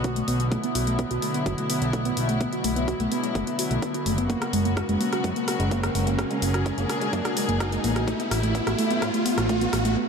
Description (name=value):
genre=melodic techno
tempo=127 BPM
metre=4/4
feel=straight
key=unclear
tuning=A4 = 440 Hz
part: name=rich studio string section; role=sustained chords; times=0.0-9.9 s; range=C#3 to A#4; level=-30 LUFS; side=left 1 dB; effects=sidechain pumping
part: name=woody wave-folded pluck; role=arpeggios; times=0.0-10.0 s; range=G#3 to F#4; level=-27 LUFS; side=right 1 dB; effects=analog chorus, sidechain pumping, digital delay
part: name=fat analog bass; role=bass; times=0.0-10.0 s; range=F#1 to A2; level=-27 LUFS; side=equal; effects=sidechain pumping
part: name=overtone-sweeping drone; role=drone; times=0.0-10.0 s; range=B2 to B3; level=-35 LUFS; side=left 1 dB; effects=chorus, built-in reverb, sidechain pumping
part: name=deep house drum kit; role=drums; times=0.0-9.9 s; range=hi-hat, rim click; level=-32 LUFS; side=equal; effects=high-pass filter on snare, high-pass filter on hats
part: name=electronic kick drum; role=drums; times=0.0-9.6 s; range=none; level=-32 LUFS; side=equal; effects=high-pass filter on kick
part: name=riser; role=sound effects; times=1.1-10.0 s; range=none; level=-32 LUFS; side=equal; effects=none
room=moderate huge ambient reverb, RT60 6.8 s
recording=dark, warm production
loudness=-22 LUFS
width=side -6 dB against mid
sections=0.0-10.1 A section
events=build-up 0.0-10.1; filter sweep on synth pluck 0.0-10.1; riser 1.1-10.0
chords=0.0 Bm; 4.3 F#; 8.1 A5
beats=0.04 | 0.52 0.99 1.46 1.94 | 2.41 2.88 3.35 3.83 | 4.30 4.77 5.24 5.71 | 6.19 6.66 7.13 7.60 | 8.08 8.55 9.02 9.49 | 9.97